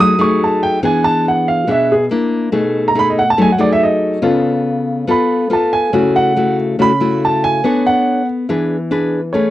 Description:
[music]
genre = bossa nova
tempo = 141 BPM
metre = 4/4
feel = straight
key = unclear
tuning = A4 = 441 Hz
[part]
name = warm grand piano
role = melody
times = 0.0-9.5 s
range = G#4 to D#6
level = -15 LUFS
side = right 2 dB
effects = none
[part]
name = nylon-string guitar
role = accompaniment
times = 0.0-9.5 s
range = B2 to C#5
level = -14 LUFS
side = left 2 dB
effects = none
[sound]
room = light reverb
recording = dry, close 1970s-style studio recording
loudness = -12 LUFS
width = side -14 dB against mid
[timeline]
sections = 0.0-9.3 A section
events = grand piano solo 0.0-9.3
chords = 0.0 B6 (rootless); 0.8 E7; 2.1 Bb; 2.5 B6; 4.2 C#7b13; 5.9 F#m7/C#; 7.6 Bm9; 8.5 E7

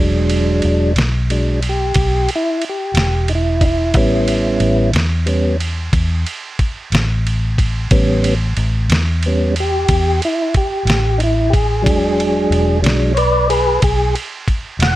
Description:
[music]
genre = slow blues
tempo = 61 BPM (dotted quarters)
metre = 12/8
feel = straight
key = unclear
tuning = A4 = 439 Hz
[part]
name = tonewheel organ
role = sustained chords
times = 0.0-15.0 s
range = F#3 to F#5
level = -17 LUFS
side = equal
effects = slow rotary speaker, overdrive
[part]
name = vintage muted fingered electric bass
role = bass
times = 0.0-15.0 s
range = E1 to E2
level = -17 LUFS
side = equal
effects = none
[part]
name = dusty soul sampler-style drum kit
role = drums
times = 0.3-15.0 s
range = kick drum, ride cymbal, snare drum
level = -19 LUFS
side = equal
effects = none
[sound]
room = light reverb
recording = none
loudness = -14 LUFS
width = side -15 dB against mid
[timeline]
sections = 0.0-15.0 A section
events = tonewheel organ solo 0.0-15.0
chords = 0.0 E9; 3.9 A9; 11.9 E9

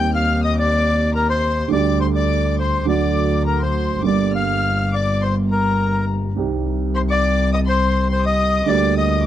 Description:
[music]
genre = tango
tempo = 104 BPM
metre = 4/4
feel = rubato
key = G minor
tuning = A4 = 440 Hz
[part]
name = bandoneon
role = melody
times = 0.0-9.2 s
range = Bb4 to G5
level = -21 LUFS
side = left 2 dB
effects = none
[part]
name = warm studio violin section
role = second line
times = 0.0-9.2 s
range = Bb5 to G6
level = -27 LUFS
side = left 8 dB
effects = none
[part]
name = dark upright piano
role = accompaniment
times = 0.0-9.3 s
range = G1 to G4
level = -22 LUFS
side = right 8 dB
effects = none
[part]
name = rich double bass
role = bass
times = 0.0-9.3 s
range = G1 to Eb2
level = -20 LUFS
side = left 1 dB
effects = none
[sound]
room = studio ambience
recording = dry, close 1970s-style studio recording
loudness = -16 LUFS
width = side -11 dB against mid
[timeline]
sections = 0.0-9.3 A section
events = none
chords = 0.0 Cm/Eb; 1.7 Dsus4; 2.9 D; 4.0 Gm; 6.4 Cm; 8.7 Gm/D

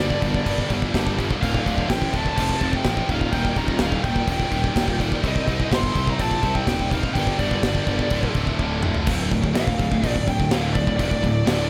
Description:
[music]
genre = heavy metal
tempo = 125 BPM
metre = 4/4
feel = straight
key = D phrygian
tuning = A4 = 441 Hz
[part]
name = high-gain lead guitar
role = melody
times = 0.0-11.7 s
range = D5 to C6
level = -30 LUFS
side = equal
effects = distortion
[part]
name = heavy high-gain guitar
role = riff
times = 0.0-9.1 s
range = D2 to C5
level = -34 LUFS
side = equal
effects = none
[part]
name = scooped high-gain guitar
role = riff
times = 0.0-11.7 s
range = D2 to C4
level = -31 LUFS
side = equal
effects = distortion
[part]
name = scooped high-gain guitar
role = riff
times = 0.0-11.7 s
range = D2 to C4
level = -33 LUFS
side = equal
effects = distortion
[part]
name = fuzz picked electric bass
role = bass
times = 0.0-11.7 s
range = D1 to C2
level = -28 LUFS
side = equal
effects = overdrive
[part]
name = big rock drum kit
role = drums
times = 0.1-11.6 s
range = crash cymbal, kick drum, snare drum, toms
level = -26 LUFS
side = equal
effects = none
[sound]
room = little or no reverb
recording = none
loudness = -22 LUFS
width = mono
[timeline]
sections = 0.0-9.1 A section; 9.1-11.7 B section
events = drum fill 8.6-9.1; lead electric guitar solo 9.1-11.7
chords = 0.0 Gm; 1.4 Dm; 2.4 F; 3.1 Eb; 5.2 Cm; 7.2 Gm; 8.1 Dm

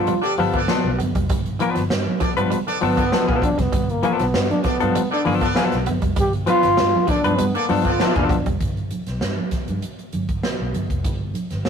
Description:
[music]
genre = funk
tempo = 98 BPM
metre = 4/4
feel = straight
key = G mixolydian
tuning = A4 = 443 Hz
[part]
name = breathy trombone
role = melody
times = 0.0-8.5 s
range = Bb3 to G4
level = -21 LUFS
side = equal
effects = none
[part]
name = semi-hollow electric guitar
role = accompaniment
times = 0.0-8.4 s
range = F3 to B4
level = -21 LUFS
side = left 5 dB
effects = none
[part]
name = vintage muted fingered electric bass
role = bass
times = 0.0-11.7 s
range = F1 to G2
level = -25 LUFS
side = equal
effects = none
[part]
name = semi-hollow electric guitar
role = riff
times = 0.1-8.6 s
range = F3 to B3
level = -28 LUFS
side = right 4 dB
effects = none
[part]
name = swinging big-band drum kit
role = drums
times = 0.1-11.7 s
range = hi-hat, kick drum, snare drum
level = -24 LUFS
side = right 1 dB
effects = none
[part]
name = congas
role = percussion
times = 0.1-11.7 s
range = none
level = -30 LUFS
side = right 4 dB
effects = none
[part]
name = clear horn section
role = second line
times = 0.2-8.3 s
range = B3 to D5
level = -26 LUFS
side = equal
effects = none
[sound]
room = moderate studio reverb, RT60 0.5 s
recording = rough rehearsal-room recording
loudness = -18 LUFS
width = side -7 dB against mid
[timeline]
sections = 0.0-8.6 A section; 8.6-11.7 B section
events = trombone solo 0.0-8.6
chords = 0.0 G9; 8.6 N.C.

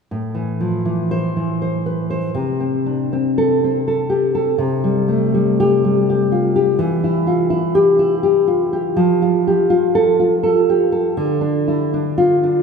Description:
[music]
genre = romantic piece for solo classical guitar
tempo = 81 BPM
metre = 3/4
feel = rubato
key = A minor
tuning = A4 = 444 Hz
[part]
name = nylon-string guitar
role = solo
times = 0.1-12.6 s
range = A2 to C5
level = -15 LUFS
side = equal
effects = none
[sound]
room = wet cathedral reverb, RT60 5.2 s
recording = recorded in a church or concert hall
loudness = -15 LUFS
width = side -5 dB against mid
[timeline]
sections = 0.1-12.6 A section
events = none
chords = 0.1 Am; 2.4 Am/C; 4.6 C5; 6.8 Em; 9.0 F; 11.2 Dmadd9

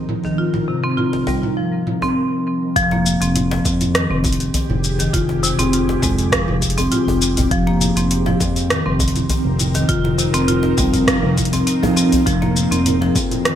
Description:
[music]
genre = organic downtempo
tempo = 101 BPM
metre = 4/4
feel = straight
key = F minor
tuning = A4 = 440 Hz
[part]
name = ethereal airy pad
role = sustained chords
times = 0.0-13.6 s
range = F3 to Bb4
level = -25 LUFS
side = right 1 dB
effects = ensemble chorus, built-in reverb, phaser, sidechain pumping
[part]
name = afro-pop drum kit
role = drums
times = 0.1-13.6 s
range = hi-hat, rim click, shaker, toms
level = -22 LUFS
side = equal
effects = overdrive, gated reverb
[part]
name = marimba with medium hard mallets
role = arpeggios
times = 0.2-13.6 s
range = C3 to F4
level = -19 LUFS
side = left 1 dB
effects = vintage 12-bit sampler grit, digital delay
[part]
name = djembe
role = percussion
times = 0.2-13.3 s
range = none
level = -26 LUFS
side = left 1 dB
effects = none
[part]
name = smooth gliding synth bass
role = bass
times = 2.8-13.6 s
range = F1 to F2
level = -21 LUFS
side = equal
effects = sidechain pumping
[part]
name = electronic kick drum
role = drums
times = 2.8-13.3 s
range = none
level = -24 LUFS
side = equal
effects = overdrive
[sound]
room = moderate plate reverb, RT60 1.4 s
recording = bright 1980s-style digital production, low-pass filter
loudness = -15 LUFS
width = side -10 dB against mid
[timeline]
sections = 0.0-2.8 A section; 2.8-13.6 B section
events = none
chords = 0.0 Cm7; 2.8 Fmadd9; 7.5 Cm7/F; 12.3 Fmadd9

